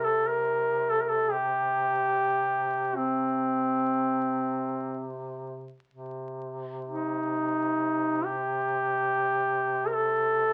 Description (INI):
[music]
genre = caucasian folk, Caucasian lament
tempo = free time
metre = none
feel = none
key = C dorian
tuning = A4 = 440 Hz
[part]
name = breathy duduk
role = melody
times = 0.0-10.5 s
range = C4 to Bb4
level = -28 LUFS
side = equal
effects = none
[part]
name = warm duduk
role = drone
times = 0.0-10.5 s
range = C3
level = -39 LUFS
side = equal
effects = none
[sound]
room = moderate studio reverb, RT60 0.5 s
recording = very old 78 rpm record, vinyl crackle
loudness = -28 LUFS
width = mono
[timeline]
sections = 0.0-5.9 A section; 5.9-10.5 A section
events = none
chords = none